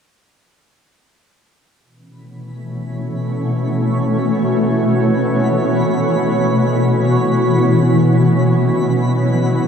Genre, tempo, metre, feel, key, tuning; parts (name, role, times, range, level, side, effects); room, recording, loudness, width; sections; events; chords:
ambient; free time; A4 = 439 Hz
shimmering ambient pad; sustained chords; 2.5-9.7 s; B2 to C#5; -14 LUFS; equal; chorus, built-in reverb
bowed-like drone; drone; 7.7-9.7 s; B3 to F#4; -34 LUFS; right 1 dB
twinkling granular texture; texture; 3.3-9.7 s; B5; -32 LUFS; right 1 dB; built-in reverb
wet lush hall reverb, RT60 2.8 s; dark, warm production; -13 LUFS; side -7 dB against mid
1.8-9.7 A section
fade-in on synth texture 1.8-9.7
1.8 A6/B; 8.0 Esus2/B